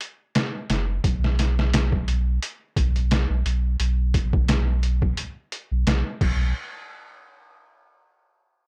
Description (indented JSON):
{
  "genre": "trip hop",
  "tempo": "87 BPM",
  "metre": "4/4",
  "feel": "swing 56% on 16ths",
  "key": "unclear",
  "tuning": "A4 = 436 Hz",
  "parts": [
    { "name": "trip hop sampler-style drum kit", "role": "drums", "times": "0.0-6.4 s", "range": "crash cymbal, hi-hat, kick drum, snare drum", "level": "-26 LUFS", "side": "equal", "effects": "overdrive" },
    { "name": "warm sub bass", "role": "bass", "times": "0.7-6.5 s", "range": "F#1 to B1", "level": "-24 LUFS", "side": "equal", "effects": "none" }
  ],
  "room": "little or no reverb",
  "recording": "dry, gritty hardware recording",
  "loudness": "-23 LUFS",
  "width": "mono",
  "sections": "0.0-6.6 A section; 6.6-8.7 B section",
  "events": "none",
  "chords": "none"
}